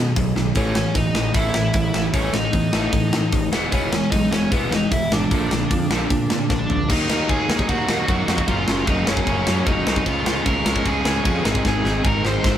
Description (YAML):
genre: punk rock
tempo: 152 BPM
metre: 4/4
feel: straight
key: unclear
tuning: A4 = 439 Hz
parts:
  - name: distorted electric guitar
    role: riff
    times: 0.0-12.6 s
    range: Gb2 to Eb4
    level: -22 LUFS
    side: equal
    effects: distortion
  - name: fuzz picked electric bass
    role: bass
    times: 0.0-12.6 s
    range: E1 to Bb2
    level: -25 LUFS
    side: equal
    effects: overdrive
  - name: tight metal drum kit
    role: drums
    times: 0.2-12.5 s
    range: crash cymbal, hi-hat, kick drum, snare drum, toms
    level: -22 LUFS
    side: equal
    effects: none
  - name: dark smooth lead guitar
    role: melody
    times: 0.6-12.6 s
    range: B3 to C6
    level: -25 LUFS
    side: equal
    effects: overdrive
room: light reverb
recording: band playing live in one room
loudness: -18 LUFS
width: side -10 dB against mid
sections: 0.0-6.9 A section; 6.9-12.6 B section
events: drum fill 0.4, 6.5-6.9, 11.6-12.6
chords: 0.0 Cb; 0.6 A; 3.5 E; 5.3 Bb; 6.9 Ebm; 8.5 Gb; 10.1 Db; 11.5 Ab